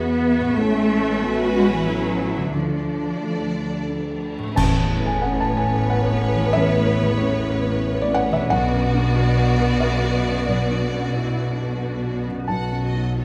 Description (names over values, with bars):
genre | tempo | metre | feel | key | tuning
cinematic, emotional film score for orchestra | 91 BPM | 3/4 | rubato | A major | A4 = 437 Hz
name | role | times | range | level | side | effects
rich studio violin section | melody | 0.0-13.2 s | C#5 to F#5 | -35 LUFS | equal | none
rich symphonic violin section | second line | 0.0-13.2 s | C#4 to B4 | -32 LUFS | equal | none
felt-muted upright piano | accompaniment | 0.0-13.2 s | A1 to A5 | -27 LUFS | equal | none
warm studio viola section | accompaniment | 0.0-13.2 s | F#3 to F#4 | -31 LUFS | equal | none
concert harp | arpeggios | 0.0-13.2 s | A2 to B4 | -35 LUFS | equal | none
rich studio double bass section | bass | 0.0-13.2 s | A1 to E2 | -28 LUFS | equal | none
warm symphonic cello section | bass | 0.0-13.2 s | A2 to B3 | -26 LUFS | equal | none
cymbal swell, clash cymbals and concert bass drum | percussion | 0.6-5.8 s | none | -31 LUFS | equal | none
timpani | percussion | 4.6-5.5 s | A2 | -29 LUFS | equal | none
room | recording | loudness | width
moderate scoring stage reverb, RT60 1.6 s | none | -21 LUFS | mono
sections
0.0-4.6 A section; 4.6-13.2 B section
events
band accent 4.6-5.2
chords
0.0 Eadd9; 0.6 Aadd9; 2.5 Dm; 4.6 Aadd9; 8.5 Bm; 12.5 B7